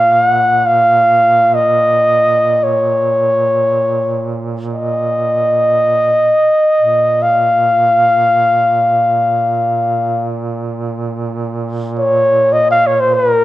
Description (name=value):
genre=caucasian folk, Caucasian lament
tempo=free time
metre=none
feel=none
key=Bb minor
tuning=A4 = 436 Hz
part: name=mellow flugelhorn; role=melody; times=0.0-13.4 s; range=Bb4 to Gb5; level=-11 LUFS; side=equal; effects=none
part: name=warm duduk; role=drone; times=0.0-13.4 s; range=Bb2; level=-21 LUFS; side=right 3 dB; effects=none
room=moderate recital hall reverb, RT60 1.5 s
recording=dark, warm production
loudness=-11 LUFS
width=side -15 dB against mid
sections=0.0-13.4 A section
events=none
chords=none